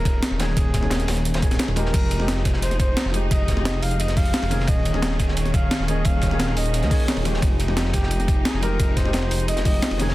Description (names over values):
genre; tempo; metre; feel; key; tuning
liquid drum and bass; 175 BPM; 4/4; straight; F minor; A4 = 440 Hz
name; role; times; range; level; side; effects
breathy flugelhorn; melody; 0.0-10.1 s; G4 to F5; -30 LUFS; equal; tape echo
felt-muted upright piano; accompaniment; 0.0-10.1 s; Eb3 to Ab4; -29 LUFS; left 1 dB; digital delay
dark detuned saw bass; bass; 0.0-10.1 s; Eb1 to Eb2; -24 LUFS; equal; none
breakbeat sampler-style drum kit; drums; 0.1-10.1 s; crash cymbal, hi-hat, snare drum; -27 LUFS; equal; none
crunchy breakbeat drum kit; drums; 0.1-10.1 s; hi-hat, ride cymbal, snare drum; -32 LUFS; equal; high-pass filter on cymbals, high-pass filter on hats, high-pass filter on snare, high-pass filter on room
electronic kick drum; drums; 0.1-9.7 s; none; -21 LUFS; equal; none
rich studio string section; sustained chords; 1.9-10.1 s; Eb3 to Eb4; -33 LUFS; right 1 dB; sidechain pumping
room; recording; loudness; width
small room ambience; dense, heavily limited modern master; -19 LUFS; side -17 dB against mid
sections
0.0-10.1 A section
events
none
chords
0.0 Eb7sus4; 1.9 Fm9; 4.7 Eb7sus4; 7.4 Fm9